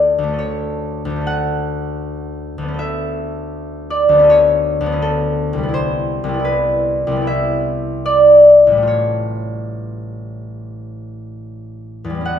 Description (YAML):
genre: classical, solo harp piece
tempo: 61-85 BPM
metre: 4/4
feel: rubato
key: unclear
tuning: A4 = 442 Hz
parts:
  - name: concert harp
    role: solo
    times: 0.0-12.4 s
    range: A1 to F#5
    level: -14 LUFS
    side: left 1 dB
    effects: none
room: wet recital hall reverb, RT60 1.4 s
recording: recorded in a church or concert hall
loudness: -13 LUFS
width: side -9 dB against mid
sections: 0.0-12.4 A section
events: none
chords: 0.0 Dmaj7; 2.8 Bm11/D; 5.7 Cmaj7; 8.9 Aaug7